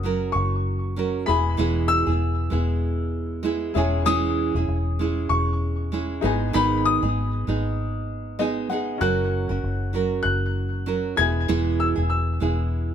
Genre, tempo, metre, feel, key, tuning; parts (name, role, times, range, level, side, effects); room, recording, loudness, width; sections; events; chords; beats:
acoustic pop; 97 BPM; 4/4; swing 55% on 16ths; A4 = 440 Hz
dark upright piano; melody; 0.0-12.9 s; B5 to G#6; -27 LUFS; left 5 dB; tape echo
felt-muted upright piano; accompaniment; 0.0-12.9 s; C#4 to G#5; -32 LUFS; left 9 dB
nylon-string guitar; accompaniment; 0.0-12.9 s; G#2 to A#4; -26 LUFS; right 6 dB
vintage muted fingered electric bass; bass; 0.0-12.9 s; E1 to G#1; -25 LUFS; left 1 dB
little or no reverb; close, detailed microphones; -21 LUFS; side -9 dB against mid
0.0-12.9 A section
felt piano fill 8.1-9.0
0.0 F#; 1.3 E; 3.8 C#m/E; 6.2 G#m; 9.0 F#; 11.2 E
0.35 0.97 | 1.59 2.21 2.83 3.45 | 4.07 4.69 5.31 5.92 | 6.54 7.16 7.78 8.40 | 9.02 9.64 10.26 10.87 | 11.49 12.11 12.73